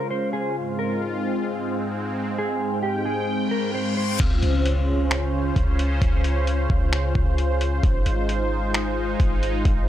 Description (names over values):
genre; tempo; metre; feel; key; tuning
hip hop, atmospheric cloud-rap; 132 BPM; 4/4; half-time; Db lydian; A4 = 439 Hz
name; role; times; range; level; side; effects
mellow electric guitar; melody; 0.0-4.2 s; G4 to C5; -28 LUFS; equal; wide subtle chorus, low-pass filter, analog delay
sweeping resonant pad; sustained chords; 0.0-9.9 s; Ab2 to G5; -25 LUFS; equal; chorus, sidechain pumping
wind-like tuned noise texture; texture; 0.0-9.9 s; C4 to Bb5; -36 LUFS; equal; built-in reverb
reverse cymbal and impact; sound effects; 3.5-6.0 s; none; -35 LUFS; left 2 dB; none
clean 808-style bass; bass; 4.2-9.9 s; Ab1 to Db2; -23 LUFS; equal; tube saturation
lo-fi sampler-style drum kit; drums; 4.2-9.8 s; crash cymbal, finger snaps, hi-hat, kick drum; -23 LUFS; equal; none
room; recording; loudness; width
little or no reverb; dry, gritty hardware recording; -21 LUFS; side -12 dB against mid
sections
0.0-4.2 A section; 4.2-9.9 B section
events
reverse cymbal 3.5-4.2; impact 4.2-6.0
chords
0.0 Dbmaj7; 0.6 Ab6; 4.2 Dbmaj7; 7.8 Ab6